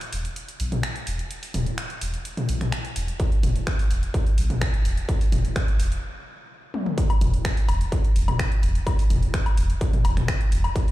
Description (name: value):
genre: melodic techno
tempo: 127 BPM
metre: 4/4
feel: straight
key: unclear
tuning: A4 = 444 Hz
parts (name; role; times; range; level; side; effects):
- techno drum kit; drums; 0.0-10.9 s; finger snaps, hi-hat, toms, woodblock; -28 LUFS; left 1 dB; none
- round analog bass; bass; 0.1-10.7 s; E1 to B1; -24 LUFS; equal; tube saturation, sidechain pumping
- electronic kick drum; drums; 3.2-10.9 s; none; -22 LUFS; equal; distortion
room: little or no reverb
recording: played on a big sound system in a bare room, large studio reverb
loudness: -21 LUFS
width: side -16 dB against mid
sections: 0.0-7.0 A section; 7.0-10.9 B section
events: build-up 0.0-7.0; stop 6.0-7.0; drum fill 6.7; drop 7.0-10.9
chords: none